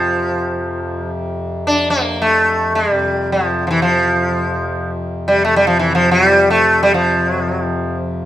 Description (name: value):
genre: indian classical, Hindustani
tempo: free time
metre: none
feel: none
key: F raga bilaval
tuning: A4 = 440 Hz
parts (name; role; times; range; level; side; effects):
- sitar; melody; 0.0-8.0 s; E3 to D4; -14 LUFS; equal; none
- hand-pumped harmonium; drone; 0.0-8.3 s; F2 to C3; -22 LUFS; left 1 dB; none
room: moderate recital hall reverb, RT60 1.7 s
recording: minimal, uncompressed stereo recording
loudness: -13 LUFS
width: side -12 dB against mid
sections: 0.0-8.3 A section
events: none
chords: none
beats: free time